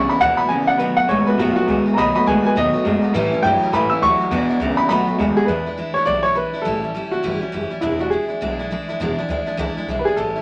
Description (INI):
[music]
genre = rockabilly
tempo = 205 BPM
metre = 4/4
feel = swing 61% on 8ths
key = E mixolydian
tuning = A4 = 437 Hz
[part]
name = warm upright piano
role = melody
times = 0.0-10.4 s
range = E4 to E6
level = -21 LUFS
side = equal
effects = none
[part]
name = picked steel-string acoustic guitar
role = accompaniment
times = 0.0-10.4 s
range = E2 to F#4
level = -27 LUFS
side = equal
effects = none
[part]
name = electric guitar through a small old amp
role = riff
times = 0.0-5.5 s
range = E2 to G#3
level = -22 LUFS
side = equal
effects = none
[part]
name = upright bass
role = bass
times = 0.0-10.4 s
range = E1 to A2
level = -31 LUFS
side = equal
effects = none
[sound]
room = moderate studio reverb, RT60 0.8 s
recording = none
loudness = -19 LUFS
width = mono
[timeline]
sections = 0.0-5.5 A section; 5.5-10.4 B section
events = upright piano solo 0.0-5.5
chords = 0.0 E7; 0.8 B7; 3.1 A7; 4.3 E7; 4.9 B7; 5.5 E7; 6.7 A7; 7.8 E7